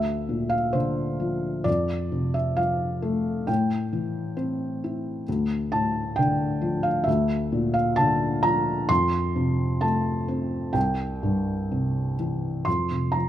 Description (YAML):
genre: classical, lyrical solo piano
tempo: 66 BPM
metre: 4/4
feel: rubato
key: unclear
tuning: A4 = 440 Hz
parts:
  - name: felt-muted upright piano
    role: solo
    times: 0.0-13.3 s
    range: C2 to C6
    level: -23 LUFS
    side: equal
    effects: none
room: light reverb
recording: close, detailed microphones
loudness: -23 LUFS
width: side -11 dB against mid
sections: 0.0-12.7 A section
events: none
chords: 0.0 Bb/D; 1.7 F; 3.5 Am7; 5.3 Dm; 7.1 Bb/D; 8.9 F; 10.8 C; 12.7 F5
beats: 0.76 | 1.67 2.58 3.49 4.38 | 5.28 6.18 7.07 7.98 | 8.90 9.82 10.76 11.71 | 12.67